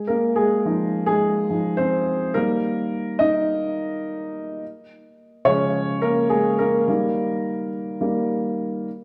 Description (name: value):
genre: pop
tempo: 106 BPM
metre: 4/4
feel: straight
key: unclear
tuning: A4 = 440 Hz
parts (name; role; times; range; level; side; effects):
- dark upright piano; solo; 0.0-8.9 s; Db3 to Eb5; -22 LUFS; equal; none
room: wet stone room reverb, RT60 1.3 s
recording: band playing live in one room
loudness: -22 LUFS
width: mono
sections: 0.0-4.6 A section; 4.6-9.0 B section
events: upright piano solo 0.0-4.6, 4.6-9.0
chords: 0.0 Fm7; 2.4 Eb; 4.6 Db; 6.9 Eb